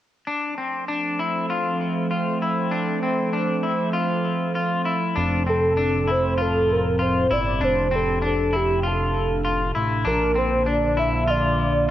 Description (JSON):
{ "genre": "dream pop", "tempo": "98 BPM", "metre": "4/4", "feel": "straight", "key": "F major", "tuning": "A4 = 439 Hz", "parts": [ { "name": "warbly tape-like pad", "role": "sustained chords", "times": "0.9-11.9 s", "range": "A2 to C5", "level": "-26 LUFS", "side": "right 2 dB", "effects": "chorus, built-in reverb" }, { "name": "electric guitar at the edge of break-up", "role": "arpeggios", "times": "0.3-11.9 s", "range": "C4 to F4", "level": "-24 LUFS", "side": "left 2 dB", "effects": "wide subtle chorus, digital delay" }, { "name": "chorused synth bass", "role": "bass", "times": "5.2-11.9 s", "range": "F1 to Bb1", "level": "-25 LUFS", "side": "equal", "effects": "none" }, { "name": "warm velvety synth lead", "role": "melody", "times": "5.5-11.9 s", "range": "G4 to E5", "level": "-22 LUFS", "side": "equal", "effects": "chorus, digital delay" } ], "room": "moderate lush hall reverb, RT60 2.0 s", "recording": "worn, warbling old tape, cassette tape, warbly pitch drift", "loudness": "-20 LUFS", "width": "side -12 dB against mid", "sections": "0.3-5.2 A section; 5.2-11.9 B section", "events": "none", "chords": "0.3 F; 10.1 Bb", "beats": "| 0.27 0.88 1.49 2.11 | 2.72 3.33 3.94 4.55 | 5.17 5.78 6.39 7.00 | 7.62 8.23 8.84 9.45 | 10.06 10.68 11.29 11.90" }